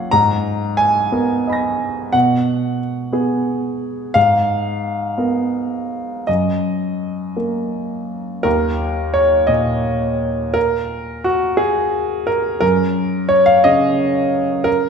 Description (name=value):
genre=neoclassical minimalist piano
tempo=54-60 BPM (dotted quarters)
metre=6/8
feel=rubato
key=Eb minor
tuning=A4 = 440 Hz
part: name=clear grand piano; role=solo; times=0.0-14.9 s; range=Eb2 to Bb6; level=-15 LUFS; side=equal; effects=none
room=wet recital hall reverb, RT60 1.4 s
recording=recorded in a church or concert hall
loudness=-15 LUFS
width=side -6 dB against mid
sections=0.0-8.5 A section; 8.5-14.9 B section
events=none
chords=0.1 Abmadd9; 2.1 B5; 4.2 Abmadd9; 6.3 Ebm/Gb; 8.5 Eb5; 12.6 Gb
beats=| 0.12 1.13 | 2.14 3.14 | 4.16 5.19 | 6.28 7.36 | 8.45 9.50 | 10.55 11.59 | 12.62 13.65 | 14.67